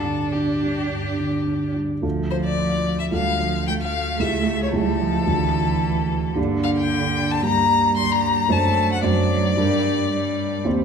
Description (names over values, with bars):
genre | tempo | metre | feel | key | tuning
quick classical-period movement for piano trio | 111 BPM | 4/4 | rubato | D minor | A4 = 440 Hz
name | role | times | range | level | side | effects
rich violin | melody | 0.0-10.6 s | G4 to C6 | -23 LUFS | left 6 dB | none
rich cello | second line | 0.0-10.8 s | D3 to D4 | -26 LUFS | right 4 dB | none
warm baby grand piano | accompaniment | 0.0-10.8 s | C#2 to C5 | -22 LUFS | right 2 dB | none
room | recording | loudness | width
wet recital hall reverb, RT60 1.6 s | none | -19 LUFS | side -6 dB against mid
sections
0.0-2.0 A section; 2.0-10.8 B section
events
none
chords
0.0 G5; 2.0 Dm; 4.2 A7/C#; 5.3 Dm; 6.4 Gm; 8.5 D7/F#; 9.6 Gm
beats
0.34 0.91 1.48 | 2.04 2.59 3.13 3.68 | 4.21 4.75 5.29 5.83 | 6.37 6.91 7.44 7.98 | 8.52 9.05 9.59 10.12 | 10.65